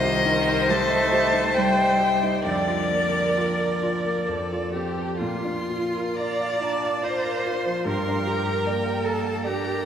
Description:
classical, slow romantic movement for piano quintet; 58-77 BPM; 3/4; rubato; Bb major; A4 = 440 Hz
rich violin; melody; 0.0-9.8 s; F4 to A5; -26 LUFS; left 4 dB
clear violin; second line; 0.0-9.9 s; A4 to C6; -31 LUFS; left 2 dB
rich cello; second line; 0.0-9.9 s; D3 to G4; -29 LUFS; right 4 dB
clear viola; accompaniment; 0.0-9.9 s; F4 to D5; -28 LUFS; right 2 dB
warm concert grand piano; accompaniment; 0.0-9.9 s; C2 to Bb5; -27 LUFS; equal
wet church reverb, RT60 3.2 s; recorded in a church or concert hall; -21 LUFS; side -8 dB against mid
0.0-5.2 A section; 5.2-9.9 B section
0.0 Cm; 2.4 Bb/F; 4.3 F; 5.2 Bb; 7.9 Gm
0.70 1.55 | 2.44 3.35 4.26 | 5.18 6.16 7.03 | 7.86 8.66 9.45

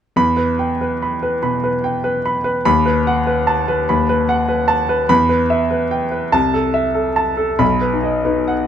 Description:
classical, virtuoso piano study; 97 BPM; 4/4; uneven beats, rubato; E minor; A4 = 440 Hz
clear grand piano; solo; 0.2-8.7 s; B1 to B5; -15 LUFS; equal
little or no reverb; close, detailed microphones; -15 LUFS; side -9 dB against mid
0.2-8.7 A section
0.2 Em; 2.7 B7/D#; 5.1 Em; 6.3 Am/C; 7.6 B
| 0.16 0.80 1.42 2.04 | 2.65 3.27 3.88 4.49 | 5.09 5.70 6.33 6.95 | 7.61 8.27

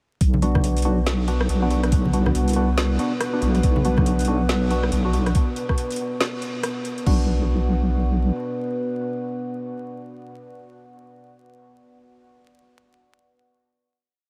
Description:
deep dubstep; 140 BPM; 4/4; swing 60% on 16ths, half-time; B minor; A4 = 440 Hz
dark analog pad; sustained chords; 0.2-11.3 s; B3 to B4; -31 LUFS; equal; lush chorus
deep soft wobble bass; bass; 0.2-8.3 s; B1 to C2; -23 LUFS; equal; chorus
electronic kick drum; drums; 0.2-7.2 s; -23 LUFS; equal; overdrive
garage drum kit; drums; 0.2-7.2 s; crash cymbal, hi-hat, rim click, snare drum; -32 LUFS; equal; overdrive
bongos and congas; percussion; 0.3-5.2 s; -31 LUFS; equal
percussive organ stab; stabs; 0.4-11.4 s; B3 to F#4; -31 LUFS; equal; analog chorus, dub echo
light reverb; vinyl crackle; -22 LUFS; mono
0.2-7.1 drop; 7.1-10.5 final chord
drop 0.2-7.1
0.2 Bm
| 0.21 0.64 1.06 1.49 | 1.92 2.35 2.78 3.21 | 3.64 4.07 4.49 4.92 | 5.35 5.78 6.21 6.64 | 7.07 7.49 7.92 8.35 | 8.78 9.21 9.64 10.06

